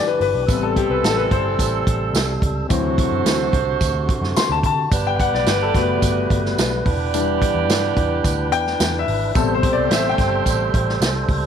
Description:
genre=uptempo 1960s-style soul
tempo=108 BPM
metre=4/4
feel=straight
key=unclear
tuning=A4 = 440 Hz
part: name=bright saxophone section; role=second line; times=0.0-11.3 s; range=E3 to D5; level=-25 LUFS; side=right 12 dB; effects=none
part: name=warm grand piano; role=accompaniment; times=0.0-11.5 s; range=B2 to C6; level=-22 LUFS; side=left 10 dB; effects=none
part: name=tonewheel organ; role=sustained chords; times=0.0-11.5 s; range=C3 to C5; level=-25 LUFS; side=right 1 dB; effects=slow rotary speaker, overdrive
part: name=vintage muted picked electric bass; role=bass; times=0.2-11.5 s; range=E1 to D3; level=-24 LUFS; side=right 1 dB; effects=none
part: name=vintage drum kit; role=drums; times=0.2-11.4 s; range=hi-hat, kick drum, snare drum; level=-22 LUFS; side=right 1 dB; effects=none
part: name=tambourine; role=percussion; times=0.5-11.1 s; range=none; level=-32 LUFS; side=right 14 dB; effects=none
room=light reverb, small room ambience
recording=1960s-style stereo with parts hard left and right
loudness=-16 LUFS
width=side -8 dB against mid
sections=0.0-11.5 A section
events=grand piano solo 0.0-11.5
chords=0.5 Am7; 2.7 D7; 4.9 Gmaj7; 6.9 Em7; 9.4 Am7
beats=| 0.49 1.04 1.59 2.15 | 2.70 3.25 3.81 4.36 | 4.92 5.47 6.03 6.58 | 7.13 7.69 8.24 8.80 | 9.35 9.91 10.46 11.02

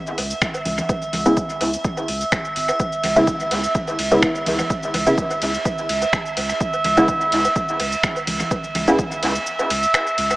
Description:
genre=dub techno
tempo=126 BPM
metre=4/4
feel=swing 53% on 16ths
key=C# minor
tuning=A4 = 435 Hz
part: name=drifting glass-harmonics texture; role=texture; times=0.0-10.4 s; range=E5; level=-22 LUFS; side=right 2 dB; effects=chorus, built-in reverb, sidechain pumping
part: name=deep house drum kit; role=drums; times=0.1-10.4 s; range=cabasa, finger snaps, hi-hat, ride cymbal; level=-24 LUFS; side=equal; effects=overdrive, studio reverb, dub echo
part: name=soft dub sub bass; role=bass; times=0.2-10.3 s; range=G#1 to C#2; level=-28 LUFS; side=equal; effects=sidechain pumping
part: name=woodblock and congas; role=percussion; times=0.2-10.4 s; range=none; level=-30 LUFS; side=equal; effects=overdrive, sidechain pumping on perc, studio reverb, dub echo
part: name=electronic kick drum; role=drums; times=0.4-9.1 s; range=none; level=-26 LUFS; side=equal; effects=overdrive, studio reverb
part: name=filtered dub chord stab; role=stabs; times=1.3-8.9 s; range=C#3 to E4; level=-21 LUFS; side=equal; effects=chorus, phaser, cassette tape, sidechain pumping, dub echo
room=wet spring reverb, RT60 2.4 s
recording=echo-heavy mix, small speaker sound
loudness=-18 LUFS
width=side -18 dB against mid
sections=0.0-10.4 A section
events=filter sweep on synth stab 0.0-10.4; kick drops out 9.5-10.4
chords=0.0 C#m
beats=0.42 | 0.89 1.37 1.84 2.32 | 2.80 3.27 3.75 4.23 | 4.70 5.18 5.66 6.13 | 6.61 7.08 7.56 8.04 | 8.51 8.99 9.46 9.94

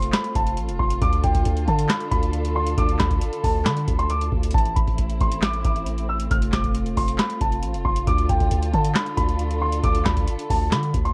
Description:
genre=hip hop, trap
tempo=136 BPM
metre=4/4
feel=half-time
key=unclear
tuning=A4 = 443 Hz
part: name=dark concert grand piano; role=melody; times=0.0-11.1 s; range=G5 to F6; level=-29 LUFS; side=equal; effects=none
part: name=dark studio string section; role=sustained chords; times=0.0-11.1 s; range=D3 to A4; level=-33 LUFS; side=equal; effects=none
part: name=long sustained 808-style bass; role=bass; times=0.0-11.1 s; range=F1 to D3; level=-27 LUFS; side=equal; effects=none
part: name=booming analog drum machine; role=drums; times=0.0-11.1 s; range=handclaps, hi-hat, kick drum, snare drum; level=-25 LUFS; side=equal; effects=none
room=studio reverb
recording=worn, warbling old tape, cassette tape, warbly pitch drift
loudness=-22 LUFS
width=mono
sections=0.0-11.1 A section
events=none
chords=0.0 F; 1.0 Dm; 4.5 Am; 6.3 F; 8.1 Dm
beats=0.13 0.57 | 1.01 1.46 1.90 2.34 | 2.78 3.22 3.66 4.10 | 4.54 4.98 5.43 5.87 | 6.31 6.75 7.19 7.63 | 8.07 8.51 8.96 9.40 | 9.84 10.28 10.72

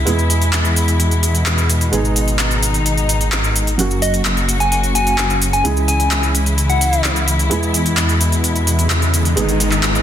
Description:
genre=EDM, festival progressive house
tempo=129 BPM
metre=4/4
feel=straight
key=unclear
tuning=A4 = 440 Hz
part: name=felt-muted upright piano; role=accompaniment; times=0.0-10.0 s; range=F#3 to G#4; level=-24 LUFS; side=right 4 dB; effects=ping-pong delay
part: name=muted studio string section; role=sustained chords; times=0.0-10.0 s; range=B2 to F#4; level=-21 LUFS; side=left 1 dB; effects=low-pass filter
part: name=wide detuned saw bass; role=bass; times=0.0-10.0 s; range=F#1 to E2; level=-18 LUFS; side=equal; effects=chorus
part: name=big-room dance drum kit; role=drums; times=0.1-10.0 s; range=handclaps, hi-hat, shaker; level=-19 LUFS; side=equal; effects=none
part: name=soft struck synth lead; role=melody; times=4.0-7.0 s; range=D#5 to G#5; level=-20 LUFS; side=left 2 dB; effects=chorus, tape echo
part: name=riser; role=sound effects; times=8.6-10.0 s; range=none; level=-24 LUFS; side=left 2 dB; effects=none
room=light reverb, digital ambience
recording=dense, heavily limited modern master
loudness=-14 LUFS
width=side -10 dB against mid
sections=0.0-10.0 A section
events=riser 8.6-10.0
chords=0.1 E; 1.9 G#m; 3.8 F#; 5.6 C#m; 7.5 E; 9.4 G#m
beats=| 0.07 0.53 1.00 1.46 | 1.93 2.39 2.86 3.32 | 3.79 4.25 4.72 5.18 | 5.65 6.11 6.58 7.04 | 7.51 7.97 8.44 8.90 | 9.37 9.84

